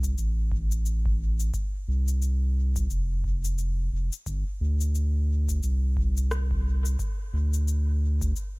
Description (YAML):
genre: ambient dub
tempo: 88 BPM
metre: 4/4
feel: swing 59% on 16ths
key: unclear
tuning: A4 = 440 Hz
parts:
  - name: warm sub bass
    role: bass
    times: 0.0-8.3 s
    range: F1 to D2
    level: -24 LUFS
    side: equal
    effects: none
  - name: electronic cabasa and rim click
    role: drums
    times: 0.0-8.5 s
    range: none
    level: -40 LUFS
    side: left 4 dB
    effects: overdrive, studio reverb, dub echo
  - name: electronic kick drum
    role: drums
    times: 0.0-8.3 s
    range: none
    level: -32 LUFS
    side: equal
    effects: studio reverb
room: little or no reverb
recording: none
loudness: -24 LUFS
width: side -29 dB against mid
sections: 0.0-8.6 A section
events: none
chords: none